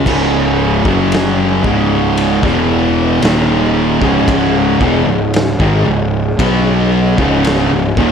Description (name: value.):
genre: stoner and doom metal.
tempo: 57 BPM.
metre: 4/4.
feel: straight.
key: C# dorian.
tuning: A4 = 441 Hz.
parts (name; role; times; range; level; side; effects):
ensemble organ-string; sustained chords; 0.0-8.1 s; C#4 to D#5; -25 LUFS; left 1 dB; none.
thick fuzz guitar; riff; 0.0-8.1 s; C#2 to B3; -17 LUFS; left 10 dB; distortion.
thick fuzz guitar; riff; 0.0-8.1 s; C#2 to B3; -17 LUFS; right 9 dB; distortion.
fuzz picked electric bass; bass; 0.0-8.1 s; C#1 to B1; -19 LUFS; equal; overdrive.
high-gain distorted guitar; riff; 0.1-8.1 s; C#2 to B3; -18 LUFS; equal; distortion.
raw garage drum kit; drums; 0.1-8.1 s; crash cymbal, kick drum, ride cymbal, snare drum; -19 LUFS; equal; none.
room: studio reverb.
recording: none.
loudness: -11 LUFS.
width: side -7 dB against mid.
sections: 0.1-8.1 A section.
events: none.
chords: 0.1 C#m.